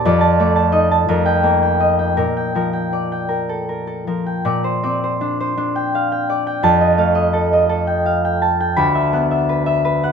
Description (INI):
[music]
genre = classical, solo harp piece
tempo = 52-60 BPM (dotted quarters)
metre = 6/8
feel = rubato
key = Bb major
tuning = A4 = 440 Hz
[part]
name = concert harp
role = solo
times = 0.0-10.1 s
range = D2 to B5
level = -15 LUFS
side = equal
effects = none
[sound]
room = light reverb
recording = minimal, uncompressed stereo recording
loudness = -15 LUFS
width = side -6 dB against mid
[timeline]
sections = 0.0-4.4 A section; 4.4-10.1 B section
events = none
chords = 0.0 F13; 1.1 F9sus4; 2.2 Bb6; 4.4 Bb69; 6.6 F9; 8.8 D69